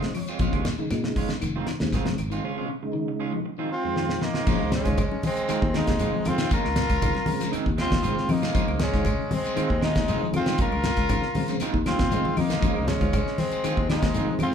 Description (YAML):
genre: afrobeat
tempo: 118 BPM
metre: 4/4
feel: straight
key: Bb minor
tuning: A4 = 444 Hz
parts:
  - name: mellow tonewheel organ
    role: accompaniment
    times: 0.0-14.5 s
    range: F2 to Eb5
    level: -32 LUFS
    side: right 2 dB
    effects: slow rotary speaker, chorus vibrato
  - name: electric guitar at the edge of break-up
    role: stabs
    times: 0.0-14.4 s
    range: Eb3 to F4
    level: -33 LUFS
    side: right 5 dB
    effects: none
  - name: fingered electric bass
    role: bass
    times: 0.0-14.5 s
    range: F1 to Bb2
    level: -29 LUFS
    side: equal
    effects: none
  - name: damped 70s drum kit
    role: drums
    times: 0.0-14.5 s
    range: crash cymbal, hi-hat, kick drum, snare drum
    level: -28 LUFS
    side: equal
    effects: none
  - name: clean electric guitar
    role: arpeggios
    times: 0.1-14.4 s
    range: Db3 to F3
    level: -33 LUFS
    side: left 6 dB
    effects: none
  - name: claves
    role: percussion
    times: 0.1-14.5 s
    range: none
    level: -44 LUFS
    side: left 1 dB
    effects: none
  - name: shekere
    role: percussion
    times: 0.1-14.5 s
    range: none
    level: -37 LUFS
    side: left 2 dB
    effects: none
  - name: congas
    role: percussion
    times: 0.7-14.5 s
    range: none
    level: -32 LUFS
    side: left 2 dB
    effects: none
  - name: raspy tenor saxophone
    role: melody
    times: 3.7-14.5 s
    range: C4 to Bb4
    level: -29 LUFS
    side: left 3 dB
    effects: none
  - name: clear trumpet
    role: second line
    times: 3.7-14.5 s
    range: Ab3 to F4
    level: -32 LUFS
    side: right 3 dB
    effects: none
room: moderate large studio reverb, RT60 0.9 s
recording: band playing live in one room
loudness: -22 LUFS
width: side -8 dB against mid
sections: 0.0-4.5 A section; 4.5-14.5 B section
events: tonewheel organ fill 0.0-0.4; drum fill 4.0-4.5, 11.9-12.6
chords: 0.4 Bbm7; 1.4 Fm7; 2.4 Dbmaj9; 3.5 Fm7; 4.5 Bbm7; 5.5 Fm7; 6.5 Bbm7; 7.5 Fm7; 8.6 Bbm7; 9.6 Fm7; 10.6 Bbm7; 11.6 Fm7; 12.6 Bbm7; 13.6 Fm7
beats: | 0.41 0.91 1.42 1.93 | 2.44 2.95 3.46 3.97 | 4.48 4.99 5.50 6.01 | 6.52 7.03 7.54 8.04 | 8.55 9.06 9.57 10.08 | 10.59 11.10 11.61 12.12 | 12.63 13.13 13.64 14.15